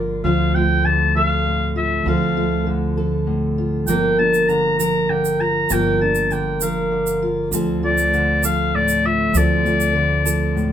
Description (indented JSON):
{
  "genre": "acoustic folk duo or small band",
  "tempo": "66 BPM (dotted quarters)",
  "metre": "6/8",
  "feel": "straight",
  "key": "D minor",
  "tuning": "A4 = 435 Hz",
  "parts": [
    { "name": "fingerpicked steel-string acoustic guitar", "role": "accompaniment", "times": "0.0-10.7 s", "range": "D2 to Bb4", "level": "-21 LUFS", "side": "left 1 dB", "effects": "none" },
    { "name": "felt-muted upright piano", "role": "arpeggios", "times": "0.0-10.7 s", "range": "F3 to D4", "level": "-24 LUFS", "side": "right 5 dB", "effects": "none" },
    { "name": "upright bass", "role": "bass", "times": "0.0-10.7 s", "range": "G1 to D2", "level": "-24 LUFS", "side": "equal", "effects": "none" },
    { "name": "clear oboe", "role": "melody", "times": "0.2-10.7 s", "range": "D5 to Bb5", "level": "-20 LUFS", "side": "left 2 dB", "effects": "none" },
    { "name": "egg shaker", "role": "percussion", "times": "3.9-10.6 s", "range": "none", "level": "-26 LUFS", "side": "right 7 dB", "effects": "none" }
  ],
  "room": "moderate studio reverb, RT60 0.6 s",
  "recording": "band playing live in one room",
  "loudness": "-16 LUFS",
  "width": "side -9 dB against mid",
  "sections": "0.0-10.7 A section",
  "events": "none",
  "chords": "0.2 Dm7; 3.9 Gm7; 7.5 Dm7"
}